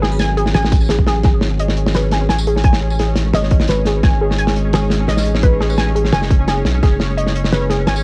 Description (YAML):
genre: half-time drum and bass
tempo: 172 BPM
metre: 4/4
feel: half-time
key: unclear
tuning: A4 = 437 Hz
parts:
  - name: bowed-like drone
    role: sustained chords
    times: 0.0-8.0 s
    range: F#3 to G#4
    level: -29 LUFS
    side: equal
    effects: built-in reverb, sidechain pumping, cassette tape
  - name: warbly dusty pluck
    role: arpeggios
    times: 0.0-8.0 s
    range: G#4 to G#5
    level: -24 LUFS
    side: equal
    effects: chorus, cassette tape, analog delay
  - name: saturated sub bass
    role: bass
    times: 0.0-8.0 s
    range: F#1 to B1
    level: -20 LUFS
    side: equal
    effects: none
  - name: damped 70s drum kit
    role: drums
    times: 0.0-8.0 s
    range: hi-hat, snare drum, tambourine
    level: -22 LUFS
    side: equal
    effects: studio ambience, cassette tape
  - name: electronic kick drum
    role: drums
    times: 0.7-6.9 s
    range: none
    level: -15 LUFS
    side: equal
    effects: studio ambience, cassette tape
  - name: pulsing gated texture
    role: texture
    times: 1.2-8.0 s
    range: C#4 to C#5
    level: -31 LUFS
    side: equal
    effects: chorus, built-in reverb, cassette tape
room: light reverb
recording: home recording on cassette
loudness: -16 LUFS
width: mono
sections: 0.0-8.0 A section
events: none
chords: 0.0 F#madd9